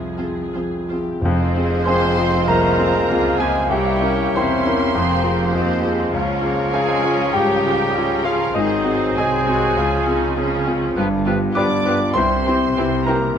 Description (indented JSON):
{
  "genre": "classical, romantic movement for piano and orchestra",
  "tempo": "99 BPM",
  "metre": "4/4",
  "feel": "uneven beats, rubato",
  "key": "F minor",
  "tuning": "A4 = 440 Hz",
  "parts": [
    { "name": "warm concert grand piano", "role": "melody", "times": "0.0-13.4 s", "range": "C2 to D6", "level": "-20 LUFS", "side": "left 2 dB", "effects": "none" },
    { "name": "muted symphonic violin section", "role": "second line", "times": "0.0-13.3 s", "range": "G4 to D6", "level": "-29 LUFS", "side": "equal", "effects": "none" },
    { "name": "muted symphonic cello section", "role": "bass", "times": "0.0-13.3 s", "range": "C2 to F3", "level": "-28 LUFS", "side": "right 4 dB", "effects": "none" },
    { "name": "muted symphonic double bass section", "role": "bass", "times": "0.0-13.3 s", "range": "E1 to F2", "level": "-28 LUFS", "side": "right 4 dB", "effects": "none" },
    { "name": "muted symphonic violin section", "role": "melody", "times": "0.2-13.1 s", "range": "E4 to C5", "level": "-32 LUFS", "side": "left 5 dB", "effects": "none" },
    { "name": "muted symphonic viola section", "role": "accompaniment", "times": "0.2-13.1 s", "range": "Bb3 to Ab4", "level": "-27 LUFS", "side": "right 2 dB", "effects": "none" },
    { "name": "clear clarinet", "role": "second line", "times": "1.2-13.2 s", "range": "B4 to Db5", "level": "-30 LUFS", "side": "left 2 dB", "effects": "none" },
    { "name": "hollow small flute group", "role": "second line", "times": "1.2-13.1 s", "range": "E5 to Ab5", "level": "-30 LUFS", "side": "right 2 dB", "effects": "none" },
    { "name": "mellow bassoon", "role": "accompaniment", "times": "1.2-13.2 s", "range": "E3 to Bb3", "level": "-28 LUFS", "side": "right 4 dB", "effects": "none" },
    { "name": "timpani", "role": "percussion", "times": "1.2-2.1, 13.4 s", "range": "F2", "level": "-27 LUFS", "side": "equal", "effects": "none" },
    { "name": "mellow cor anglais", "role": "second line", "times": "1.8-13.4 s", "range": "Eb4 to D5", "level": "-25 LUFS", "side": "right 3 dB", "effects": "none" },
    { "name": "mellow French horn section", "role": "sustained chords", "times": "1.9-13.4 s", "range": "Eb3 to D4", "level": "-25 LUFS", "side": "left 4 dB", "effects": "none" }
  ],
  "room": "moderate recital hall reverb, RT60 1.4 s",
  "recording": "none",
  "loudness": "-16 LUFS",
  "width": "side -8 dB against mid",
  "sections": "0.0-1.2 A section; 1.2-13.4 B section",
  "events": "none",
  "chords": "0.0 Fm; 3.7 C7b9; 5.0 Fm; 6.1 Db; 8.5 Ab7; 9.8 Dbmaj7; 11.0 G7; 12.1 C7"
}